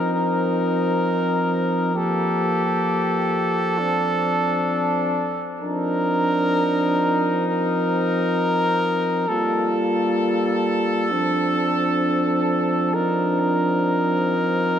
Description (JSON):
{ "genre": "hip hop", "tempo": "free time", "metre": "none", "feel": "none", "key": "C dorian", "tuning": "A4 = 440 Hz", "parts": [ { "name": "dark brass ensemble", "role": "solo", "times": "0.0-14.8 s", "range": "F3 to Bb4", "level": "-19 LUFS", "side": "equal", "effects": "analog delay" } ], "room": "moderate echo chamber reverb, RT60 1.7 s, small room ambience", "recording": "echo-heavy mix", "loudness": "-19 LUFS", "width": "side -9 dB against mid", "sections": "0.0-5.6 A section; 5.6-14.8 B section", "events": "none", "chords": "0.1 F7sus4; 2.0 Gm9; 3.8 Dm7; 5.6 Cm11; 7.5 F7sus4; 9.3 Gm9; 11.1 Dm7; 12.9 Cm11", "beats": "free time" }